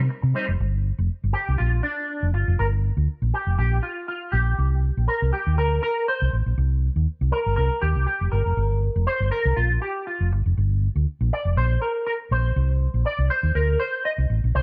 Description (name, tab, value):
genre	disco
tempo	120 BPM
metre	4/4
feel	straight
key	G minor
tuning	A4 = 439 Hz
part	hollow-body short-scale fingered electric bass	bass	0.0-14.6 s	F1 to C3	-23 LUFS	equal	none
part	electric guitar with an envelope filter	accompaniment	0.1-14.6 s	G3 to Eb5	-28 LUFS	equal	ensemble chorus
room	digital ambience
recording	dark, warm production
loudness	-23 LUFS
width	mono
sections	0.6-14.6 A section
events	clean electric guitar solo 0.6-14.6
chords	0.0 Cm7; 0.6 Gm7; 4.6 C7(no3); 8.6 Gm7; 12.6 C7(no3)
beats	0.09 | 0.59 1.09 1.59 2.09 | 2.59 3.09 3.58 4.08 | 4.58 5.08 5.58 6.08 | 6.58 7.08 7.57 8.07 | 8.57 9.07 9.57 10.06 | 10.56 11.06 11.56 12.06 | 12.55 13.05 13.55 14.05 | 14.55